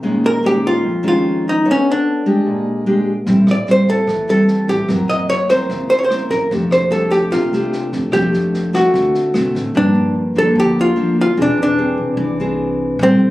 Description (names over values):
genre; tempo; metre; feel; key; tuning
bossa nova; 148 BPM; 4/4; straight; unclear; A4 = 440 Hz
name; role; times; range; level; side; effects
nylon-string guitar; accompaniment; 0.0-13.3 s; F2 to C#5; -17 LUFS; equal; none
archtop guitar, miked and amplified; melody; 0.3-13.3 s; C4 to Eb5; -16 LUFS; equal; plate reverb
upright bass; bass; 3.3-13.3 s; E1 to E2; -27 LUFS; right 1 dB; none
open jazz drum kit; drums; 3.3-9.6 s; kick drum, rim click, snare drum; -29 LUFS; right 1 dB; none
room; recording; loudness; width
light reverb; recorded on a phone in the room, club reverb; -13 LUFS; side -16 dB against mid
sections
0.0-9.8 A section; 9.8-13.3 B section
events
none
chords
0.0 Bbm7; 1.6 Bm9; 2.5 Bb6; 3.3 Am7; 4.9 Gb7#11; 6.5 F69; 8.9 D7; 9.8 Gm7; 11.4 Eaug7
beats
| 0.02 0.43 0.83 1.24 | 1.65 2.05 2.46 2.86 | 3.27 3.67 4.08 4.48 | 4.89 5.29 5.70 6.11 | 6.51 6.92 7.32 7.73 | 8.13 8.54 8.94 9.35 | 9.76 10.16 10.57 10.97 | 11.38 11.78 12.19 12.59 | 13.00